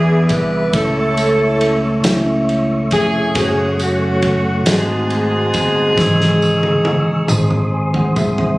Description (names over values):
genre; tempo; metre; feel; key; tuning
slow gospel; 46 BPM (dotted quarters); 6/8; straight; unclear; A4 = 440 Hz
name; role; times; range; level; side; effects
mellow saxophone section; melody; 0.0-8.1 s; A3 to B4; -18 LUFS; equal; none
mellow tine electric piano; accompaniment; 0.0-8.6 s; G#2 to G#5; -20 LUFS; equal; phaser
percussive tonewheel organ; sustained chords; 0.0-8.6 s; A3 to E6; -22 LUFS; equal; slow rotary speaker, chorus vibrato
fingered electric bass; bass; 0.0-8.6 s; E#1 to E2; -20 LUFS; equal; none
natural country drum kit; drums; 0.3-8.6 s; kick drum, ride cymbal, snare drum, toms; -22 LUFS; equal; none
tambourine; percussion; 0.3-8.6 s; none; -30 LUFS; right 1 dB; none
room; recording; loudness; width
light reverb; recorded on a phone in the room, studio reverb; -13 LUFS; side -20 dB against mid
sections
0.0-8.6 A section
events
drum fill 6.0-8.6; tine electric piano fill 7.3-8.6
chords
0.0 E7; 0.7 A/C#; 3.4 F#m; 4.7 G#7b9; 6.0 C#m/G#; 7.3 G#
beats
| 0.73 2.04 | 3.35 4.67 | 5.98 7.29